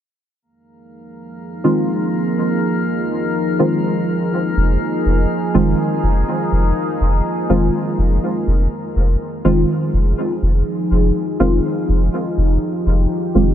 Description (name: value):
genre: dub techno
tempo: 123 BPM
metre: 4/4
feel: straight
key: F minor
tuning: A4 = 440 Hz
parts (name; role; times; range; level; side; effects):
- deep dark ambient pad; sustained chords; 1.2-13.5 s; F3 to Ab4; -22 LUFS; equal; chorus, built-in reverb
- drifting glass-harmonics texture; texture; 1.1-8.2 s; Bb3 to Bb4; -26 LUFS; equal; chorus, built-in reverb
- deep mellow chord stab; stabs; 1.6-13.5 s; Eb3 to F4; -20 LUFS; right 1 dB; chorus, phaser, vintage 12-bit sampler grit, dub echo
- soft dub sub bass; bass; 4.6-13.5 s; F1; -16 LUFS; equal; none
room: moderate huge ambient reverb, RT60 7.1 s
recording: none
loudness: -15 LUFS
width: side -10 dB against mid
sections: 0.4-8.2 A section; 8.2-13.5 B section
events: filter sweep on synth stab 8.2-13.5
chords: 0.4 Fm7